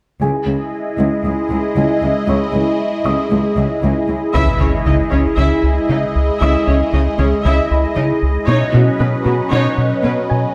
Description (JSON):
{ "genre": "cinematic", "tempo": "116 BPM", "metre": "4/4", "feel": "straight", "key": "C# minor", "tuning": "A4 = 438 Hz", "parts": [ { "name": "phased analog pad", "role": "sustained chords", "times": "0.2-10.5 s", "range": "F#3 to D#5", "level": "-20 LUFS", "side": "equal", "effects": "phaser, chorus" }, { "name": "rich symphonic cello section", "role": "bass", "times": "0.2-10.1 s", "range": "C#2 to C#3", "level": "-22 LUFS", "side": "equal", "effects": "none" }, { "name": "warm baby grand piano", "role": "texture", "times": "0.2-10.5 s", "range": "G#4 to D#6", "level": "-30 LUFS", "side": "equal", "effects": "delay" }, { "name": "rich symphonic viola section", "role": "accompaniment", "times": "4.3-10.1 s", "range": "B3 to E5", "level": "-24 LUFS", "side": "equal", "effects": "none" }, { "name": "round analog bass", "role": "riff", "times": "4.3-10.5 s", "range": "C#2 to B3", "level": "-19 LUFS", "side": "equal", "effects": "none" }, { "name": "impact", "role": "sound effects", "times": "4.3-6.4 s", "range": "none", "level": "-26 LUFS", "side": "equal", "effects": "none" } ], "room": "moderate concert hall reverb, RT60 1.9 s", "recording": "none", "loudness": "-16 LUFS", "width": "mono", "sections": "0.2-4.3 A section; 4.3-10.5 B section", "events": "build-up 4.3-10.5; impact 4.3-6.4", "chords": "0.2 C#madd9; 8.5 Badd9" }